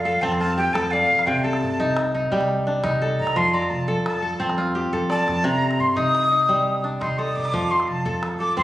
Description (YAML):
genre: west african traditional, West African string and xylophone music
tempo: 115 BPM (dotted quarters)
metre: 12/8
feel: straight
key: C dorian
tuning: A4 = 441 Hz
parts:
  - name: breathy jazz flute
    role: melody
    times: 0.0-8.6 s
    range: F5 to Eb6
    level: -22 LUFS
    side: left 1 dB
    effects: none
  - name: kora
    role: arpeggios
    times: 0.0-8.6 s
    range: C3 to D5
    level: -23 LUFS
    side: equal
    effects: none
  - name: upright bass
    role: bass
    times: 0.0-8.6 s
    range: C2 to G2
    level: -28 LUFS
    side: right 1 dB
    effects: none
  - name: calabash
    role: percussion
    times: 0.2-8.6 s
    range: none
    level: -35 LUFS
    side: right 1 dB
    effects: none
room: wet recital hall reverb, RT60 1.5 s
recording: recorded on a phone in the room, studio reverb, compression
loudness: -19 LUFS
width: side -15 dB against mid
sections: 0.0-8.6 A section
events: flute solo 0.0-8.6; drum fill 4.9-5.4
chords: 0.0 F; 1.3 Cm